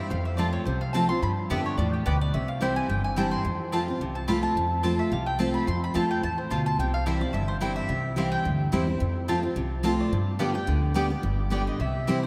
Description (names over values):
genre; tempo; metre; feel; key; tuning
bluegrass; 216 BPM; 4/4; swing 53% on 8ths; unclear; A4 = 437 Hz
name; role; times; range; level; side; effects
mandolin; melody; 0.0-12.3 s; G4 to C6; -34 LUFS; equal; none
picked steel-string acoustic guitar; accompaniment; 0.0-12.3 s; F2 to G4; -30 LUFS; equal; none
upright bass; bass; 0.1-12.2 s; G1 to G2; -31 LUFS; equal; none
mandolin; stabs; 0.4-12.2 s; B3 to A5; -37 LUFS; equal; none
room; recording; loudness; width
wet cathedral reverb, RT60 5.1 s; in a vast, echoing space; -26 LUFS; mono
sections
0.0-2.3 A section; 2.3-11.2 A section; 11.2-12.3 B section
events
mandolin solo 0.0-11.2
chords
0.1 F; 1.2 G; 2.3 C; 3.4 F; 6.8 C; 9.0 F; 10.1 G